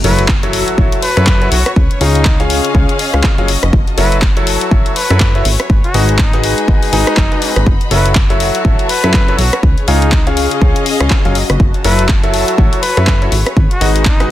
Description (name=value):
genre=piano house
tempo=122 BPM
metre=4/4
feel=swing 59% on 16ths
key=F# dorian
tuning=A4 = 442 Hz
part: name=warm trumpet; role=melody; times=0.0-14.3 s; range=D#4 to B4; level=-21 LUFS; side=equal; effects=digital delay
part: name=clear concert grand piano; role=riff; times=0.0-14.3 s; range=C#3 to G#5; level=-17 LUFS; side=left 1 dB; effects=sidechain pumping, digital delay
part: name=plucky analog bass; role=bass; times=0.0-14.3 s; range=F#1 to F#2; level=-15 LUFS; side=equal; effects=sidechain pumping
part: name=house drum kit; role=drums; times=0.0-14.3 s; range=handclaps, hi-hat, rim click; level=-18 LUFS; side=left 1 dB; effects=studio reverb
part: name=impact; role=sound effects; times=0.0-1.8 s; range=none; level=-28 LUFS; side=right 1 dB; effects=none
part: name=rich studio string section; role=texture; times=0.0-14.3 s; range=C#4 to B5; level=-22 LUFS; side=left 3 dB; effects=sidechain pumping
part: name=electronic kick drum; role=drums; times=0.3-14.2 s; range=none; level=-12 LUFS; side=equal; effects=studio reverb
room=studio ambience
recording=dense, heavily limited modern master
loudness=-10 LUFS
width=side -13 dB against mid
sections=0.0-14.3 A section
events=impact 0.0-1.8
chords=0.0 F#m7; 1.8 C#; 3.5 F#m7; 5.5 G#m7; 7.7 F#m7; 9.6 C#; 11.4 F#m7; 13.3 G#m7